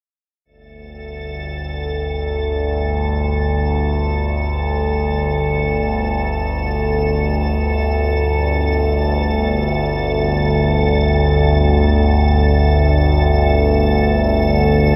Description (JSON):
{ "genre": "dark ambient drone", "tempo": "free time", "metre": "none", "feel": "none", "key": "unclear", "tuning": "A4 = 440 Hz", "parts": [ { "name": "overtone-sweeping drone", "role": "drone", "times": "0.9-15.0 s", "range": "G1 to D2", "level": "-18 LUFS", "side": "equal", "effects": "chorus, built-in reverb" }, { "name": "icy glass pad", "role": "texture", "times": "1.0-15.0 s", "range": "A4", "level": "-25 LUFS", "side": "equal", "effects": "chorus, built-in reverb" } ], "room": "wet cathedral reverb, RT60 4.9 s", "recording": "none", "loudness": "-17 LUFS", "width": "mono", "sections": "0.4-15.0 A section", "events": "none", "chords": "0.4 G5" }